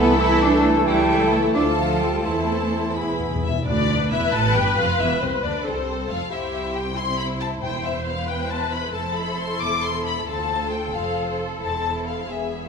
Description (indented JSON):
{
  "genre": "classical, dramatic, fast romantic movement for symphony orchestra",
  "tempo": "90 BPM (dotted quarters)",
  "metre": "6/8",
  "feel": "rubato",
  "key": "A minor",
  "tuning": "A4 = 440 Hz",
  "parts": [
    { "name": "warm symphonic violin section", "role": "melody", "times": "0.0-12.7 s", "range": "E4 to D6", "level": "-27 LUFS", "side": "left 6 dB", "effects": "none" },
    { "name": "concert flute", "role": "second line", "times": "0.0-3.0 s", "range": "F5 to E6", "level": "-27 LUFS", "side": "equal", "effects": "none" },
    { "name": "dark cor anglais", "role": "second line", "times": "0.0-3.4 s", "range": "G#4 to C5", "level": "-31 LUFS", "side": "right 2 dB", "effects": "none" },
    { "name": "warm symphonic violin section", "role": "second line", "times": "0.0-12.7 s", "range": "B3 to B5", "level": "-31 LUFS", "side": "left 3 dB", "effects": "none" },
    { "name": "mellow bassoon", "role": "accompaniment", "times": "0.0-3.4 s", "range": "E3 to F3", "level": "-27 LUFS", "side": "right 2 dB", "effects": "none" },
    { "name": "rich symphonic viola section", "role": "accompaniment", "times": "0.0-12.7 s", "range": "E4 to C5", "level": "-26 LUFS", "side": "equal", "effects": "none" },
    { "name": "clear trombone section", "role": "sustained chords", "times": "0.0-3.4 s", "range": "D3 to C4", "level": "-27 LUFS", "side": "right 3 dB", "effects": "none" },
    { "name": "dark French horn section", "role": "sustained chords", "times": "0.0-3.4 s", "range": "E4 to A4", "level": "-29 LUFS", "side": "left 6 dB", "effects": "none" },
    { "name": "rich symphonic double bass section", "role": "bass", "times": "0.0-12.7 s", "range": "E1 to E2", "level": "-28 LUFS", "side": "right 2 dB", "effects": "none" },
    { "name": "warm symphonic cello section", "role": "bass", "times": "0.0-12.7 s", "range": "C2 to E4", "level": "-27 LUFS", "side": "right 2 dB", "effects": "none" },
    { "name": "timpani", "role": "percussion", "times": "3.0-4.3, 7.6-8.2 s", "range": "E2 to A2", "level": "-30 LUFS", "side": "left 2 dB", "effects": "none" }
  ],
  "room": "wet recital hall reverb, RT60 1.3 s",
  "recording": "minimal, uncompressed stereo recording",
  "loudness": "-20 LUFS",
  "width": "side -6 dB against mid",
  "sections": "0.0-3.7 A section; 3.7-12.7 B section",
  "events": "timpani fill 3.0-3.7",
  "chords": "0.0 Am/C; 0.9 A7/C#; 1.6 Dm; 2.2 Am/E; 3.0 E; 3.7 A5; 5.0 Am/E; 6.3 C; 7.6 C/E; 8.9 Fmaj7; 10.3 Dm7; 11.6 Am/E"
}